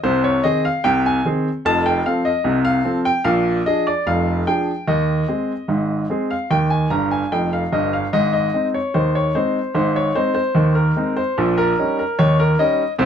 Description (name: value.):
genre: ragtime piano.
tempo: 74 BPM.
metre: 2/4.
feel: straight.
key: Ab major.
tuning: A4 = 440 Hz.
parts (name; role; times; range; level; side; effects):
clear baby grand piano; solo; 0.0-13.1 s; F1 to Bb5; -16 LUFS; equal; none.
room: moderate studio reverb, RT60 0.5 s.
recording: none.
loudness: -16 LUFS.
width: side -8 dB against mid.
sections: 0.0-13.1 A section.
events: grand piano fill 6.9-8.1.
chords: 0.0 Ab/C; 1.6 F; 3.3 Bb7; 4.9 Ab/Eb; 6.5 Eb; 8.1 Ab; 11.4 Eb7/Bb.